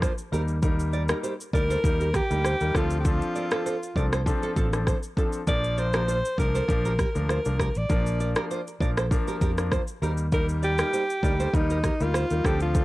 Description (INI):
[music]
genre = afrobeats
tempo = 99 BPM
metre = 4/4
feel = swing 55% on 16ths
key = unclear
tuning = A4 = 439 Hz
[part]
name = clear grand piano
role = accompaniment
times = 0.0-12.8 s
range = F3 to Bb4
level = -31 LUFS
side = left 2 dB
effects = none
[part]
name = nylon-string guitar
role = riff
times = 0.0-12.5 s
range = F4 to D5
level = -33 LUFS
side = right 5 dB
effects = tape echo
[part]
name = fingered electric bass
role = bass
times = 0.0-12.8 s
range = A1 to F2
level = -27 LUFS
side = equal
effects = none
[part]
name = afro-pop drum kit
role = drums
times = 0.0-12.8 s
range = kick drum, rim click, shaker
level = -27 LUFS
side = equal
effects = none
[part]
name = breathy alto saxophone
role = melody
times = 1.5-12.8 s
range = Eb4 to D5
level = -28 LUFS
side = equal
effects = none
[sound]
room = studio ambience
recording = dry, gritty hardware recording, cassette tape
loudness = -23 LUFS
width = side -18 dB against mid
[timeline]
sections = 0.0-12.8 A section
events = none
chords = 0.3 Eb; 2.7 Dm7; 5.5 Bb; 10.0 Eb